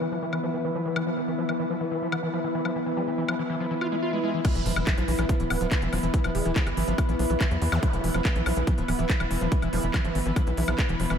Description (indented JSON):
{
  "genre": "psychedelic trance",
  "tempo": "142 BPM",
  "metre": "4/4",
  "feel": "straight",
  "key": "unclear",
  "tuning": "A4 = 440 Hz",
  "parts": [
    { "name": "evolving wavetable pad", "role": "sustained chords", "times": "0.0-11.2 s", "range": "E3 to B3", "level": "-31 LUFS", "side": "left 1 dB", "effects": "chorus, built-in reverb, sidechain pumping" },
    { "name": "overdriven acid bass", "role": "riff", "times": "0.0-11.1 s", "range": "E3 to F4", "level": "-31 LUFS", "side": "equal", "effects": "distortion, auto-pan, sidechain pumping, ping-pong delay" },
    { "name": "airy breathy pad", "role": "texture", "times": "0.0-11.2 s", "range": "E4 to B5", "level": "-32 LUFS", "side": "equal", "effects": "chorus, sidechain pumping" },
    { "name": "drum and bass drum kit", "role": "drums", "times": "0.3-11.2 s", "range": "crash cymbal, handclaps, hi-hat, woodblock", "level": "-33 LUFS", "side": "left 2 dB", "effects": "none" },
    { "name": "resonant blip pluck", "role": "second line", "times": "2.1-9.8 s", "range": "E3 to B3", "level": "-39 LUFS", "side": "right 1 dB", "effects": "none" },
    { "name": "swell, impact and zap", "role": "sound effects", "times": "3.8-7.8 s", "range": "none", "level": "-35 LUFS", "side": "right 1 dB", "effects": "none" },
    { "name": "electronic kick drum", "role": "drums", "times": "4.4-10.9 s", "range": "none", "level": "-24 LUFS", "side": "equal", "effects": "none" },
    { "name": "tight sequencer bass", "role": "bass", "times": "4.6-11.2 s", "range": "D1 to E2", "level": "-28 LUFS", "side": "equal", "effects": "none" }
  ],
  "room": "moderate lush hall reverb, RT60 2.2 s",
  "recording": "dreamy mix soaked in reverb",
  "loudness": "-23 LUFS",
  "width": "side -8 dB against mid",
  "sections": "0.0-4.4 A section; 4.4-11.2 B section",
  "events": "swell 3.8-4.4; drop 4.4-11.2; impact 4.4-6.1",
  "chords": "0.0 E5",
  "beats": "0.22 0.64 | 1.07 1.49 1.91 2.33 | 2.76 3.18 3.60 4.03 | 4.45 4.87 5.29 5.71 | 6.14 6.56 6.98 7.41 | 7.83 8.25 8.67 9.10 | 9.52 9.94 10.36 10.79"
}